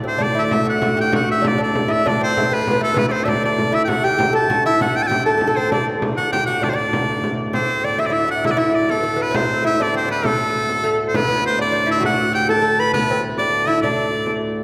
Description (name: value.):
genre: medieval dance.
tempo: 132 BPM (dotted quarters).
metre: 6/8.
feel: straight.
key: D mixolydian.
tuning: A4 = 437 Hz.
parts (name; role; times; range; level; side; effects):
lute; second line; 0.0-14.4 s; A3 to B4; -24 LUFS; equal; none.
pedal harmonium; drone; 0.0-14.6 s; D2 to A2; -28 LUFS; equal; none.
edgy shawm; melody; 0.1-14.4 s; A4 to B5; -22 LUFS; equal; none.
frame drum; percussion; 0.1-14.6 s; none; -27 LUFS; equal; none.
room: wet concert hall reverb, RT60 2.1 s.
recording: heard from further back in the room.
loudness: -19 LUFS.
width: mono.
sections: 0.2-7.5 A section; 7.5-14.6 B section.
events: speeding up 0.0-14.6.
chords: none.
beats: | 0.20 0.66 | 1.13 1.59 | 2.05 2.51 | 2.97 3.43 | 3.89 4.35 | 4.81 5.27 | 5.72 6.18 | 6.63 7.09 | 7.54 8.00 | 8.45 8.90 | 9.35 9.80 | 10.25 10.70 | 11.15 11.60 | 12.04 12.49 | 12.93 13.38 | 13.82 14.26.